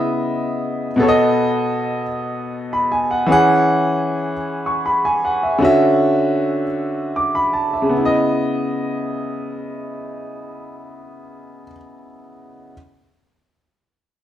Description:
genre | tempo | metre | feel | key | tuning
R&B | 52 BPM (dotted quarters) | 6/8 | straight | C# minor | A4 = 440 Hz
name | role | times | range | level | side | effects
warm grand piano | solo | 0.0-12.7 s | B2 to D6 | -17 LUFS | equal | none
room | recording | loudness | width
moderate large studio reverb, RT60 1.1 s | band playing live in one room | -16 LUFS | side -11 dB against mid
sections
0.0-7.9 A section; 7.9-10.2 B section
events
none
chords
0.0 C#m9; 1.0 B7; 3.3 E69; 5.6 Dmaj9; 7.9 C#m9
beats
| 0.99 2.15 | 3.30 4.45 | 5.61 6.76 | 7.92 9.07

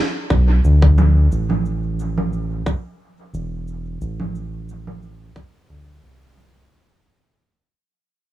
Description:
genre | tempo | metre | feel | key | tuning
ambient dub | 89 BPM | 4/4 | swing 54% on 16ths | unclear | A4 = 440 Hz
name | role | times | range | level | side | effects
round analog bass | bass | 0.3-6.7 s | E1 to D2 | -17 LUFS | equal | none
electronic kick drum | drums | 0.3-5.5 s | none | -18 LUFS | equal | overdrive
shaker and congas | drums | 0.3-6.5 s | none | -24 LUFS | right 3 dB | overdrive, dub echo
room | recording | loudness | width
little or no reverb | echo-heavy mix | -16 LUFS | side -14 dB against mid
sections
0.0-1.3 A section; 1.3-6.7 B section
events
fade-out 1.3-6.7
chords
none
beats
0.64 | 1.31 1.99 2.66 3.33 | 4.01 4.68 5.36 6.03

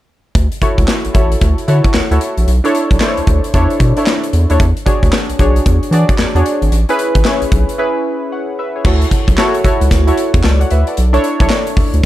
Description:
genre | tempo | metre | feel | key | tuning
R&B, new jack swing | 113 BPM | 4/4 | swing 63% on 16ths | unclear | A4 = 441 Hz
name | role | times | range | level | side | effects
round analog bass | bass | 0.4-12.0 s | G#1 to E3 | -13 LUFS | equal | none
big rock drum kit | drums | 0.4-12.1 s | crash cymbal, handclaps, hi-hat, kick drum, snare drum | -15 LUFS | equal | none
warm analog keys | accompaniment | 0.6-12.1 s | C#4 to F#5 | -16 LUFS | equal | chorus
room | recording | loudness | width
little or no reverb | dark, warm production | -11 LUFS | side -14 dB against mid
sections
0.4-8.8 A section; 8.8-12.1 B section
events
break 7.8-8.8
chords
0.4 Dmaj9; 2.5 Bm11; 4.6 E13; 6.7 Amaj9 (rootless); 8.8 Dmaj9; 11.0 Bm11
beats
| 0.35 0.88 1.41 1.95 | 2.48 3.01 3.54 4.07 | 4.60 5.13 5.66 6.19 | 6.72 7.25 7.79 8.32 | 8.85 9.38 9.91 10.44 | 10.97 11.50 12.03

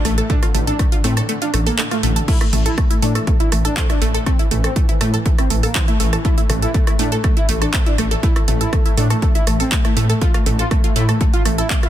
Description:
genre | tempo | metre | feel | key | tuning
melodic techno | 121 BPM | 4/4 | straight | A minor | A4 = 441 Hz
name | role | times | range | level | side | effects
analog synth brass | melody | 0.0-11.9 s | D3 to F4 | -24 LUFS | equal | chorus, sidechain pumping, ping-pong delay
dark detuned saw bass | bass | 0.0-11.6 s | A1 to A2 | -19 LUFS | equal | sidechain pumping
swarming drone | drone | 0.0-11.9 s | A2 to E3 | -32 LUFS | left 1 dB | none
wide unison pluck | arpeggios | 0.1-11.9 s | A3 to D6 | -24 LUFS | right 1 dB | sidechain pumping, ping-pong delay
techno drum kit | drums | 0.1-11.9 s | crash cymbal, handclaps, hi-hat, rim click, toms | -24 LUFS | right 2 dB | soft clipping on snare, sidechain pumping on hats, sidechain pumping on toms, sidechain pumping on cymbals
electronic kick drum | drums | 0.3-11.8 s | none | -17 LUFS | equal | none
room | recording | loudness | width
digital ambience | dense, heavily limited modern master | -14 LUFS | side -12 dB against mid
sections
0.0-11.9 A section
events
kick drops out 1.3-2.3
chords
0.0 Dm/A; 2.3 A5; 10.2 Dm/A (rootless)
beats
| 0.30 0.79 1.29 1.78 | 2.28 2.78 3.27 3.77 | 4.26 4.76 5.26 5.75 | 6.25 6.74 7.24 7.74 | 8.23 8.73 9.22 9.72 | 10.21 10.71 11.21 11.70

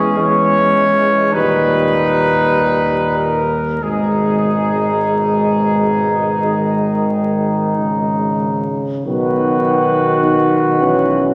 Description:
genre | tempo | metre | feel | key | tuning
classical, hymn-like piece for brass band | 45-53 BPM | 4/4 | rubato | G# minor | A4 = 440 Hz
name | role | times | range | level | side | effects
bright trumpet section | melody | 0.0-11.3 s | G#4 to C#5 | -21 LUFS | equal | none
warm flugelhorn | second line | 0.0-11.3 s | C#4 to F#4 | -21 LUFS | equal | none
mellow euphonium | accompaniment | 0.0-11.3 s | G3 to D#4 | -22 LUFS | equal | none
warm trombone | accompaniment | 0.0-11.3 s | A#2 to E3 | -26 LUFS | equal | none
warm tuba | bass | 0.0-11.3 s | G#1 to E2 | -24 LUFS | equal | none
room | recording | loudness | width
wet concert hall reverb, RT60 2.5 s | vinyl crackle | -15 LUFS | mono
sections
0.0-9.1 A section; 9.1-11.3 B section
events
none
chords
0.0 C#m/E; 1.3 D#; 3.8 G#m; 9.1 B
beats
0.19 1.34 2.53 | 3.81 5.13 6.46 7.78 | 9.06 10.23

